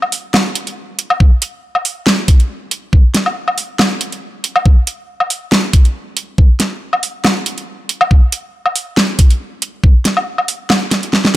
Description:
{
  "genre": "dubstep",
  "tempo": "139 BPM",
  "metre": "4/4",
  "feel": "swing 54% on 16ths, half-time",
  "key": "none",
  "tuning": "none",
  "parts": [
    { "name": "dubstep drum kit", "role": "drums", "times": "0.0-11.3 s", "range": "hi-hat, snare drum, woodblock", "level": "-14 LUFS", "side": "equal", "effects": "none" },
    { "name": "electronic kick drum", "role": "drums", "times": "1.2-9.9 s", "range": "none", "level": "-8 LUFS", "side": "equal", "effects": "none" }
  ],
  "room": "digital ambience",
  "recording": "none",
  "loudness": "-12 LUFS",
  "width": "side -16 dB against mid",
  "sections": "0.0-11.4 A section",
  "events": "drum fill 10.9-11.4",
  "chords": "none"
}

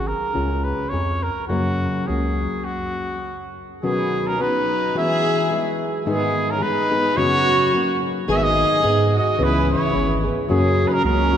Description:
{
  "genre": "mexican folk, mariachi",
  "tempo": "106 BPM",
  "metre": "2/4",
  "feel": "swing 55% on 8ths, uneven beats",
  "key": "F# major, B major from 3.8 s",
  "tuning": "A4 = 440 Hz",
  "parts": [
    { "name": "clear trumpet", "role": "melody", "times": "0.0-11.4 s", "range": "F#4 to E5", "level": "-22 LUFS", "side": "equal", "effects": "none" },
    { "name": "nylon-string guitar", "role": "accompaniment", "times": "0.0-11.4 s", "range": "F#2 to G#4", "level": "-22 LUFS", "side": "left 1 dB", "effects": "none" },
    { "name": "round analog bass", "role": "bass", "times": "0.0-2.5, 8.3-11.4 s", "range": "G#1 to G#2", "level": "-24 LUFS", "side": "right 1 dB", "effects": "none" },
    { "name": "dark symphonic violin section", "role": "second line", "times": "3.8-11.4 s", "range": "B3 to G#4", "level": "-25 LUFS", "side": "right 2 dB", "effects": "none" }
  ],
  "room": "wet cathedral reverb, RT60 4.8 s",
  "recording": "recorded in a church or concert hall",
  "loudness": "-18 LUFS",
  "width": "side -9 dB against mid",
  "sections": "0.0-3.8 A section; 3.8-11.4 B section",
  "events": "stop 2.7-3.8",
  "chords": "0.4 C#; 1.5 F#; 3.8 Badd9; 5.0 Eadd9; 6.1 G#m; 7.2 F#sus4; 7.7 F#; 8.3 G#m; 9.4 C#m7; 10.5 F#"
}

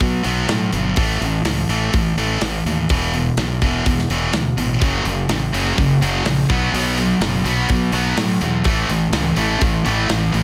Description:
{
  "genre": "hard rock",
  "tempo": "125 BPM",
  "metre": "4/4",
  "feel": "straight",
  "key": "unclear",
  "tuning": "A4 = 437 Hz",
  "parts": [
    { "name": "scooped high-gain guitar", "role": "riff", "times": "0.0-10.4 s", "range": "E2 to B3", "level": "-22 LUFS", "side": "equal", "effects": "distortion" },
    { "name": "fuzz fingered electric bass", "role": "bass", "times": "0.0-10.4 s", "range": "E1 to B2", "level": "-24 LUFS", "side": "equal", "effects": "overdrive" },
    { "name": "tight metal drum kit", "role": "drums", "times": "0.0-10.4 s", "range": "hi-hat, kick drum, snare drum", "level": "-25 LUFS", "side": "equal", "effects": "none" },
    { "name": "scooped high-gain guitar", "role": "riff", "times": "4.8-10.4 s", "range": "F#2 to B3", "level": "-26 LUFS", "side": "equal", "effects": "distortion" }
  ],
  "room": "light reverb",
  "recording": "none",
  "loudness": "-18 LUFS",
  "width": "mono",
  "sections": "0.0-10.4 A section",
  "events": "none",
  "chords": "0.0 B5; 1.0 A5; 2.9 E5; 4.8 F#5; 6.5 B5; 8.7 A5"
}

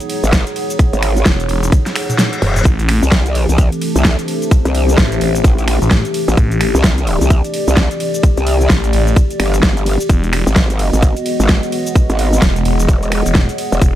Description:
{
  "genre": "bass house",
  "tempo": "129 BPM",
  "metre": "4/4",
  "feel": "swing 60% on 16ths",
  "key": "unclear",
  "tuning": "A4 = 442 Hz",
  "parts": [
    { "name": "sweeping resonant pad", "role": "sustained chords", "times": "0.0-14.0 s", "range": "E3 to A4", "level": "-24 LUFS", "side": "right 2 dB", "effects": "chorus, sidechain pumping" },
    { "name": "big-room dance drum kit", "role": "drums", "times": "0.0-13.9 s", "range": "finger snaps, hi-hat, ride cymbal, shaker, snare drum, toms", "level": "-19 LUFS", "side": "equal", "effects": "overdrive, studio reverb" },
    { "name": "warbly tape-like pad", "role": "texture", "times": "0.0-14.0 s", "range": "D4 to F#5", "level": "-21 LUFS", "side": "left 1 dB", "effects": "chorus, built-in reverb, sidechain pumping" },
    { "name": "growl bass", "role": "bass", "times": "0.2-13.8 s", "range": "E1 to C2", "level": "-14 LUFS", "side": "equal", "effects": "chorus, tube saturation, sidechain pumping" },
    { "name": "electronic kick drum", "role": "drums", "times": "0.3-13.9 s", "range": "none", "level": "-12 LUFS", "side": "equal", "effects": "studio reverb" },
    { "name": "phased detuned saw bass", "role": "bass", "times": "1.3-14.0 s", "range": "E1 to A1", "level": "-16 LUFS", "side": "equal", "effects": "phaser, overdrive, sidechain pumping" },
    { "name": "reverse cymbal", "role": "sound effects", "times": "1.9-2.7 s", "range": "none", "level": "-25 LUFS", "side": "left 4 dB", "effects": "none" }
  ],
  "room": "little or no reverb",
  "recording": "dark, warm production",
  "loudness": "-12 LUFS",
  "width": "side -13 dB against mid",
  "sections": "0.0-14.0 A section",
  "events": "drum fill 1.7-2.7; reverse cymbal 1.9-2.7; kick drops out 2.2-2.7",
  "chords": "0.0 Eadd9; 2.7 Am; 10.1 Eadd9"
}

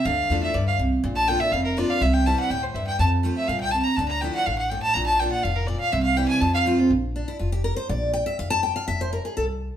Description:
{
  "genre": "bluegrass",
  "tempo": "245 BPM",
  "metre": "4/4",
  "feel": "straight",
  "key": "unclear",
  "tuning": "A4 = 440 Hz",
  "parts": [
    { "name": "rich fiddle", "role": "melody", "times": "0.0-6.6 s", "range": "Bb4 to Bb5", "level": "-23 LUFS", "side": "equal", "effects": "none" },
    { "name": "picked steel-string acoustic guitar", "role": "accompaniment", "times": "0.0-9.4 s", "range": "F2 to A5", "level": "-25 LUFS", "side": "equal", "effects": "none" },
    { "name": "upright bass", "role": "bass", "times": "0.1-9.7 s", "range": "F1 to F2", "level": "-26 LUFS", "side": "equal", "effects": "none" }
  ],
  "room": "wet stone room reverb, RT60 0.9 s",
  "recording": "band playing live in one room",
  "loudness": "-20 LUFS",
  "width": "side -10 dB against mid",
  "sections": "0.0-6.9 A section; 6.9-9.8 A section",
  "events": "fiddle solo 0.0-6.9; steel-string acoustic guitar solo 6.9-9.8",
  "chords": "0.1 Dmadd9; 1.0 Bb; 2.0 C; 3.0 F; 4.0 Dmadd9; 5.0 Bb; 5.9 C; 6.4 F; 6.9 Bb; 8.9 F5"
}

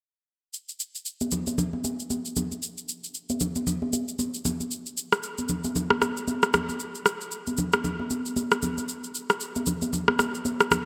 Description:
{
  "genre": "amapiano",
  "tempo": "115 BPM",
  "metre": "4/4",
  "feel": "swing 58% on 16ths",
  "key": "none",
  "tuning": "none",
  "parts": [
    { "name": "electronic shaker and rim click", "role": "drums", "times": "0.5-10.9 s", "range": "none", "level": "-28 LUFS", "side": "equal", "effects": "none" },
    { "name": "congas", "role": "percussion", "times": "1.2-10.9 s", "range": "none", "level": "-31 LUFS", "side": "equal", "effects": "none" }
  ],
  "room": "moderate lush hall reverb, RT60 2.9 s",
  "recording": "bright 1980s-style digital production",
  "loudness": "-28 LUFS",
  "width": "mono",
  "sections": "0.5-10.9 A section",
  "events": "none",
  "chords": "none"
}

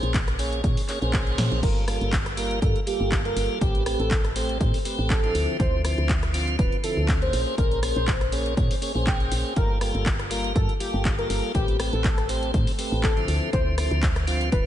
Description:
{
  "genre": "deep house",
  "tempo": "121 BPM",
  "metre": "4/4",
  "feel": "swing 54% on 16ths",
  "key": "G dorian",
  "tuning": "A4 = 440 Hz",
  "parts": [
    { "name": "tonewheel organ", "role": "stabs", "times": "0.0-14.7 s", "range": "D3 to Db5", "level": "-29 LUFS", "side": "equal", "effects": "slow rotary speaker, vintage 12-bit sampler grit, sidechain pumping, ping-pong delay" },
    { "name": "woody FM bass", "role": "bass", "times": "0.0-14.6 s", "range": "D1 to Bb2", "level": "-26 LUFS", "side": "equal", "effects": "tube saturation, sidechain pumping" },
    { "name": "punchy analog drum machine", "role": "drums", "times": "0.0-14.6 s", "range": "crash cymbal, handclaps, hi-hat, rim click, snare drum", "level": "-32 LUFS", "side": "equal", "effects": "none" },
    { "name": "electronic kick drum", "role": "drums", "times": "0.1-14.6 s", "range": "none", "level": "-25 LUFS", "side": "equal", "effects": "none" },
    { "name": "warm velvety synth lead", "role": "melody", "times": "1.6-14.7 s", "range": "G4 to G5", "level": "-30 LUFS", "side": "equal", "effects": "chorus, tape echo" }
  ],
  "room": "light reverb, digital ambience",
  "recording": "nothing above 10.7 kHz",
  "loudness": "-21 LUFS",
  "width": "side -12 dB against mid",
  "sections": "0.0-14.7 A section",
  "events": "drum fill 1.4",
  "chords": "0.0 Bbm9; 1.6 Gm9; 3.6 Am9; 5.3 Dm9; 7.3 Bbm9; 9.6 Gm9; 11.5 Am9; 13.3 Dm9"
}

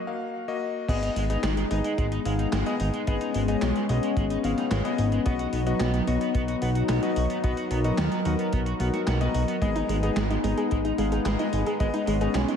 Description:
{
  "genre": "synthwave",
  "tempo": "110 BPM",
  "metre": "4/4",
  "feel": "straight",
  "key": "G# dorian",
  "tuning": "A4 = 440 Hz",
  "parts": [
    { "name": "bright electric grand piano", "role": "stabs", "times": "0.0-12.3 s", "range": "A#3 to F#5", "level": "-31 LUFS", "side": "left 5 dB", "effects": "ping-pong delay" },
    { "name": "warm analog pad", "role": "sustained chords", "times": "0.9-12.6 s", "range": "F#3 to A#4", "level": "-28 LUFS", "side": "left 2 dB", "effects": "chorus, sidechain pumping" },
    { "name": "biting overdriven guitar", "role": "riff", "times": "0.9-12.6 s", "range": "G#3 to F#4", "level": "-36 LUFS", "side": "right 4 dB", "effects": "lush chorus, ping-pong delay" },
    { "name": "fat analog bass", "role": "bass", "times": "0.9-12.5 s", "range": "G#1 to D#2", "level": "-27 LUFS", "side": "equal", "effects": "sidechain pumping" },
    { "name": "gated 80s digital drum machine", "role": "drums", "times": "0.9-12.6 s", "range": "crash cymbal, handclaps, hi-hat, snare drum", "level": "-34 LUFS", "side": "right 1 dB", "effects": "gated reverb, gated reverb snare" },
    { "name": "kick drum", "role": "drums", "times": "0.9-11.9 s", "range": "none", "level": "-27 LUFS", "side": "equal", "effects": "none" },
    { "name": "soft round pluck", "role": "arpeggios", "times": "9.6-12.6 s", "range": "G#3 to G#4", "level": "-31 LUFS", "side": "right 2 dB", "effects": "chorus, ping-pong delay" }
  ],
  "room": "moderate plate reverb, RT60 1.6 s, digital ambience",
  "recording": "dreamy mix soaked in reverb",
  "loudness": "-23 LUFS",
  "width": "side -7 dB against mid",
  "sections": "0.9-12.6 A section",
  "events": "break 0.0-0.9",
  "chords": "0.0 D#m; 0.9 G#m; 5.3 B; 9.6 G#m"
}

